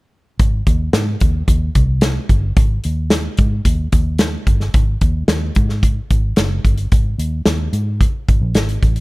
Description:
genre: uptempo 1960s-style soul.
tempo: 110 BPM.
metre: 4/4.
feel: straight.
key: Ab major.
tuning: A4 = 441 Hz.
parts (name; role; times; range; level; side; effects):
vintage muted fingered electric bass; bass; 0.4-9.0 s; Gb1 to Ab2; -18 LUFS; equal; none.
natural country drum kit; drums; 0.4-9.0 s; hi-hat, kick drum, snare drum; -15 LUFS; equal; none.
room: little or no reverb.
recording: dark, warm production.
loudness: -14 LUFS.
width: side -22 dB against mid.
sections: 0.4-4.7 A section; 4.7-9.0 B section.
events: none.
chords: none.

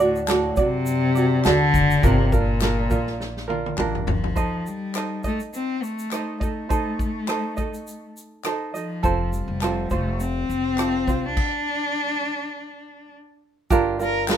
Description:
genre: acoustic pop.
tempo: 103 BPM.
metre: 4/4.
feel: swing 55% on 16ths.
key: unclear.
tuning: A4 = 438 Hz.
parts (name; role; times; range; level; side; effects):
rich cello; melody; 0.0-14.4 s; A2 to Bb4; -24 LUFS; left 2 dB; none.
tenor ukulele; accompaniment; 0.0-14.4 s; C4 to Eb5; -25 LUFS; right 4 dB; none.
upright bass; bass; 0.0-4.3, 9.0-14.4 s; F1 to F#2; -27 LUFS; equal; none.
natural country drum kit; drums; 0.2-14.4 s; crash cymbal, kick drum, rim click, shaker, snare drum, toms; -26 LUFS; left 1 dB; none.
group handclap; percussion; 0.3-14.4 s; none; -32 LUFS; left 6 dB; none.
room: moderate studio reverb, RT60 0.7 s.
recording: minimal, uncompressed stereo recording.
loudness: -20 LUFS.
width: side -10 dB against mid.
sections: 0.0-4.4 A section; 4.4-13.7 B section.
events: drum fill 3.2-4.4; stop 11.4-13.7.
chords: 0.0 D; 2.0 Gm7; 4.4 Adim; 9.0 F; 11.4 N.C.; 13.7 Gm7.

